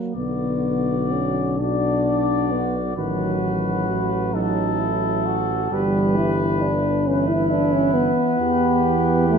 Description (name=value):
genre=classical, hymn-like piece for brass band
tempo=44 BPM (dotted quarters)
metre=6/8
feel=rubato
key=B minor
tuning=A4 = 440 Hz
part: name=mellow trombone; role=accompaniment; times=0.0-9.4 s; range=B2 to F#3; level=-28 LUFS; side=right 5 dB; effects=none
part: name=warm euphonium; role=accompaniment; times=0.0-9.4 s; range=F#3 to E4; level=-22 LUFS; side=left 2 dB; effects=none
part: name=mellow trumpet section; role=melody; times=0.1-9.4 s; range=A4 to D5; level=-27 LUFS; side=left 6 dB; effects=none
part: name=mellow flugelhorn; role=second line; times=0.2-9.4 s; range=D#4 to G4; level=-27 LUFS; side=right 7 dB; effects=none
part: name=mellow tuba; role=bass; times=0.2-9.4 s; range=G1 to E2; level=-26 LUFS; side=equal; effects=none
room=wet scoring stage reverb, RT60 1.7 s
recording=nothing above 7.5 kHz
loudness=-19 LUFS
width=side -6 dB against mid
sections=0.2-9.4 A section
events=none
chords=0.2 Bm; 3.0 B7/A; 5.7 Em/G; 8.4 Em